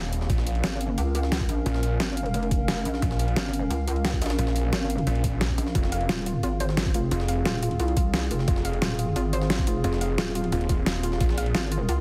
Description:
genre	dark technical drum and bass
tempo	176 BPM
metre	4/4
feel	straight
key	F minor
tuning	A4 = 440 Hz
part	snarling distorted saw bass	bass	0.0-11.5 s	Eb1 to Bb1	-28 LUFS	equal	distortion, tube saturation
part	warbly tape-like pad	texture	0.0-12.0 s	C4 to F5	-35 LUFS	equal	chorus, built-in reverb, sidechain pumping
part	dubstep drum kit	drums	0.1-12.0 s	hi-hat, snare drum	-31 LUFS	equal	overdrive
part	jungle sampler-style drum kit	drums	0.1-12.0 s	hi-hat, ride cymbal, snare drum	-42 LUFS	equal	none
part	electronic kick drum	drums	0.3-11.3 s	none	-28 LUFS	equal	overdrive
part	pulsing pluck wobble bass	bass	0.6-12.0 s	Eb1 to Db2	-29 LUFS	equal	chorus
part	soft round pluck	arpeggios	5.8-12.0 s	F4 to F5	-34 LUFS	equal	chorus, sidechain pumping, dub echo
room	light reverb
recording	heavily compressed radio sound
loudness	-25 LUFS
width	mono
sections	0.0-12.0 A section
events	none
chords	0.3 Bbm; 5.8 Fm; 11.2 Bbm

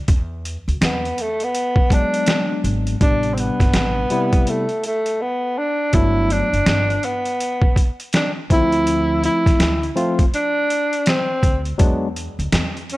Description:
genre	hip hop, jazz-hop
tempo	82 BPM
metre	4/4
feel	swing 62% on 16ths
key	G major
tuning	A4 = 440 Hz
part	upright bass	bass	0.1-12.8 s	F#1 to E2	-23 LUFS	equal	none
part	trip hop sampler-style drum kit	drums	0.1-13.0 s	hi-hat, kick drum, snare drum	-18 LUFS	equal	none
part	breathy tenor saxophone	melody	0.8-13.0 s	A3 to E4	-20 LUFS	equal	slapback echo
part	barky tine electric piano	accompaniment	1.9-12.1 s	C3 to F4	-22 LUFS	left 2 dB	medium stereo tremolo
room	light reverb, studio reverb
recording	none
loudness	-16 LUFS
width	side -18 dB against mid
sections	0.0-13.0 A section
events	silent gap 5.2-5.9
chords	0.1 E7; 3.0 Am11; 5.9 Gmaj7; 8.5 Dm9; 11.8 E7

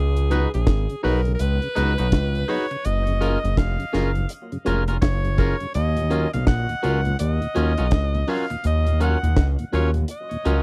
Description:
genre	lovers rock reggae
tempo	83 BPM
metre	4/4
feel	swing 62% on 16ths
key	Eb minor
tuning	A4 = 440 Hz
part	edgy alto saxophone	melody	0.0-10.6 s	Ab4 to Gb5	-31 LUFS	equal	tape echo
part	smooth gliding synth bass	bass	0.0-10.6 s	F1 to Eb2	-24 LUFS	equal	none
part	tonewheel organ	accompaniment	0.2-10.5 s	Eb2 to F4	-35 LUFS	equal	none
part	deep reggae drum kit	drums	0.2-10.6 s	hi-hat, kick drum, snare drum	-23 LUFS	equal	none
part	mellow tine electric piano	accompaniment	0.3-10.6 s	Db4 to Cb5	-28 LUFS	equal	none
part	twangy electric guitar	stabs	0.3-10.6 s	Gb3 to Cb5	-30 LUFS	equal	none
room	little or no reverb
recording	dry, close 1970s-style studio recording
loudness	-22 LUFS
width	mono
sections	0.0-10.6 A section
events	none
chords	0.0 Db9sus4; 2.8 Gbmaj7; 5.7 Ebm9

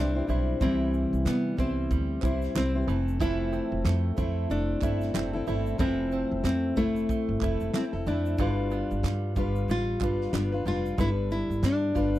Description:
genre	acoustic pop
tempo	93 BPM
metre	4/4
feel	swing 60% on 16ths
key	unclear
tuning	A4 = 442 Hz
part	nylon-string guitar	melody	0.0-12.2 s	A3 to F4	-30 LUFS	left 1 dB	none
part	fingerpicked steel-string acoustic guitar	accompaniment	0.0-12.2 s	C3 to C5	-31 LUFS	left 3 dB	none
part	open-back banjo	arpeggios	0.0-12.2 s	D3 to F4	-38 LUFS	right 16 dB	none
part	upright bass	bass	0.0-12.2 s	F1 to C3	-30 LUFS	right 1 dB	none
part	loose indie drum kit	drums	0.3-12.2 s	kick drum, shaker, snare drum	-32 LUFS	right 1 dB	none
part	group handclap	percussion	1.3-11.8 s	none	-41 LUFS	right 12 dB	none
room	little or no reverb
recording	none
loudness	-25 LUFS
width	side -14 dB against mid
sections	0.0-12.2 A section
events	none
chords	0.0 C; 2.9 Fmaj7; 8.4 G7

